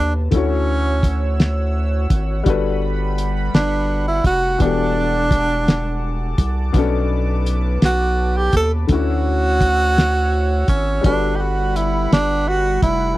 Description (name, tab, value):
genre	slow six-eight R&B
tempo	56 BPM (dotted quarters)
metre	6/8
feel	straight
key	unclear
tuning	A4 = 442 Hz
part	breathy tenor saxophone	melody	0.0-13.2 s	C#4 to A4	-20 LUFS	right 2 dB	none
part	warm grand piano	accompaniment	0.0-13.2 s	B2 to C#5	-25 LUFS	left 6 dB	none
part	chorused pulse-width pad	sustained chords	0.0-13.2 s	G3 to E6	-29 LUFS	equal	none
part	round analog bass	bass	0.0-13.1 s	E1 to D#2	-20 LUFS	equal	none
part	cloth-damped thuddy drum kit	drums	0.3-13.0 s	hi-hat, kick drum, snare drum	-16 LUFS	equal	none
room	little or no reverb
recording	dry, close 1970s-style studio recording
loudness	-16 LUFS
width	side -17 dB against mid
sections	0.0-13.2 A section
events	none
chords	0.3 Dmaj9; 2.5 Gmaj7; 4.6 Em11; 6.8 Bm7; 8.9 Dmaj9; 11.0 Gmaj7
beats	| 0.32 1.39 | 2.47 3.54 | 4.61 5.68 | 6.75 7.82 | 8.89 9.97 | 11.04 12.11